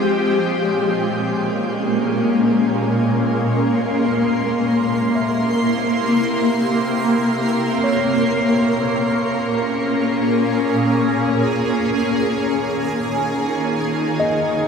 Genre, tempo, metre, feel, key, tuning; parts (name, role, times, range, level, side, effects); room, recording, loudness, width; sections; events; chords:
ambient; free time; A4 = 440 Hz
shimmering ambient pad; sustained chords; 0.0-14.7 s; Bb2 to C6; -17 LUFS; equal; chorus, built-in reverb, phaser
tine electric piano; arpeggios; 0.0-14.7 s; Db5 to F5; -29 LUFS; left 1 dB; medium stereo tremolo, ping-pong delay
wet shimmer reverb, RT60 8.2 s; -16 LUFS; side -6 dB against mid
0.0-14.7 A section
fade-in on tine electric piano 0.0-14.7
0.0 Bbm7; 3.9 C7; 7.8 Bbm7; 11.6 Eb7sus4